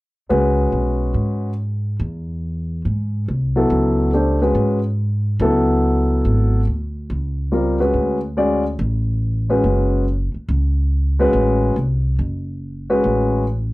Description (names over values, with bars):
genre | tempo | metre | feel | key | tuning
jazz | 142 BPM | 4/4 | swing 67% on 8ths | C# phrygian | A4 = 440 Hz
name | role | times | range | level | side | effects
warm concert grand piano | accompaniment | 0.3-13.4 s | F#3 to D5 | -18 LUFS | left 1 dB | none
upright bass | bass | 0.3-13.7 s | F#1 to G#2 | -19 LUFS | equal | none
room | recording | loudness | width
light reverb | none | -17 LUFS | side -19 dB against mid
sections
0.3-13.7 A section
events
none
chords
0.3 C#m7; 7.1 D